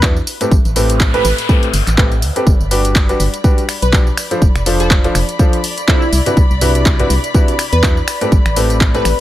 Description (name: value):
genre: piano house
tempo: 123 BPM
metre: 4/4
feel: swing 56% on 16ths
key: unclear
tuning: A4 = 440 Hz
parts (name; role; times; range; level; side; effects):
- plucky unison lead; melody; 0.0-9.2 s; E4 to B4; -22 LUFS; right 1 dB; analog chorus, ping-pong delay
- clear concert grand piano; riff; 0.0-9.0 s; A2 to C5; -18 LUFS; equal; sidechain pumping, ping-pong delay
- organ-like FM bass; bass; 0.0-9.1 s; F1 to E2; -16 LUFS; equal; sidechain pumping
- electronic kick drum; drums; 0.0-8.9 s; none; -12 LUFS; equal; none
- house drum kit; drums; 0.0-9.2 s; finger snaps, handclaps, hi-hat, tambourine; -20 LUFS; equal; none
- noise sweep; sound effects; 0.7-2.5 s; none; -25 LUFS; left 1 dB; none
- dark studio string section; sustained chords; 2.5-9.2 s; D5 to B5; -24 LUFS; left 1 dB; sidechain pumping
room: little or no reverb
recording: none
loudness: -11 LUFS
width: side -14 dB against mid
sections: 0.0-9.2 A section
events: noise sweep 0.7-2.5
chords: 0.3 Am9; 2.5 Gmaj7; 4.2 F6; 6.1 Cmaj9#11; 8.1 Am9